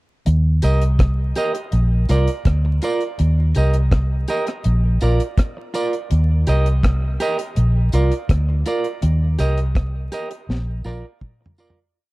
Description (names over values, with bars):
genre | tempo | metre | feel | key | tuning
roots reggae | 82 BPM | 4/4 | straight | Eb major | A4 = 442 Hz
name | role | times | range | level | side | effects
vintage muted fingered electric bass | bass | 0.3-11.0 s | Bb1 to Eb2 | -16 LUFS | equal | none
deep reggae drum kit | drums | 0.3-11.9 s | hi-hat, kick drum, rim click, snare drum, toms | -20 LUFS | equal | none
clean electric guitar | accompaniment | 0.6-11.8 s | F4 to Eb5 | -24 LUFS | right 2 dB | none
tambourine | percussion | 0.6-11.8 s | none | -39 LUFS | right 1 dB | none
room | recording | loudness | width
small room ambience | dark, warm production, vinyl crackle | -16 LUFS | side -21 dB against mid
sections
0.3-11.9 verse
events
fade-out 9.0-11.9; drum fill 10.5-11.9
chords
0.3 Eb; 1.7 Bb; 3.2 Eb; 4.6 Bb; 6.1 Eb; 7.6 Bb; 9.0 Eb; 10.5 Bb